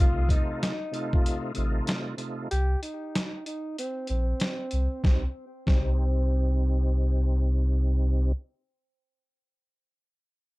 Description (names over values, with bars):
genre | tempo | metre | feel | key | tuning
hip hop, boom-bap hip-hop | 95 BPM | 4/4 | swing 63% on 16ths | C dorian | A4 = 440 Hz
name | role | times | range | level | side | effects
breathy tenor saxophone | melody | 0.0-6.9 s | C4 to G4 | -35 LUFS | equal | high-pass filter, low-pass filter, ping-pong delay
bright tonewheel organ | accompaniment | 0.0-8.3 s | C3 to G4 | -32 LUFS | equal | overdrive, chorus vibrato, slow rotary speaker, cassette tape, high-pass filter, low-pass filter
sub bass with octave | bass | 0.0-8.3 s | A1 to C2 | -24 LUFS | equal | none
trip hop sampler-style drum kit | drums | 0.3-5.9 s | hi-hat, kick drum, snare drum | -25 LUFS | equal | none
room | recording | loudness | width
little or no reverb | dark, warm production | -24 LUFS | side -22 dB against mid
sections
0.0-5.0 A section; 5.0-7.6 B section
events
filter sweep 0.0-5.0; break 2.5-5.0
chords
0.0 F7/C; 2.5 Cm